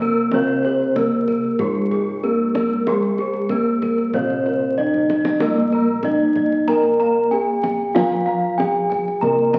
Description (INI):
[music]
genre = Javanese gamelan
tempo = 94 BPM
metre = 4/4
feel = straight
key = Bb slendro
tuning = A4 = 440 Hz
[part]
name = gamelan-type bronze metallophone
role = melody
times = 0.0-9.6 s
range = Ab3-45c to Bb4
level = -22 LUFS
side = equal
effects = none
[part]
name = gamelan-type bronze metallophone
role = accompaniment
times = 0.0-9.6 s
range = C3+30c to Bb3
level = -30 LUFS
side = equal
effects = none
[part]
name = gamelan-type bossed gongs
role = arpeggios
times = 0.0-9.6 s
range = Ab4-45c to Bb5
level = -30 LUFS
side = equal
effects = none
[part]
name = gamelan-type bronze metallophone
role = arpeggios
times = 0.0-9.6 s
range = Ab4-45c to Bb5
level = -25 LUFS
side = equal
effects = none
[part]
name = gamelan-type bossed gongs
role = bass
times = 0.0-9.6 s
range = Bb1 to Bb4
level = -30 LUFS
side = equal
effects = none
[part]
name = kendang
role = percussion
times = 0.3-9.6 s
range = none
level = -31 LUFS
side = equal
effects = none
[sound]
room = wet large studio reverb, RT60 1.4 s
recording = very old 78 rpm record, vinyl crackle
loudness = -19 LUFS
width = mono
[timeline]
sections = 0.0-9.6 A section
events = drum fill 4.8-5.4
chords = none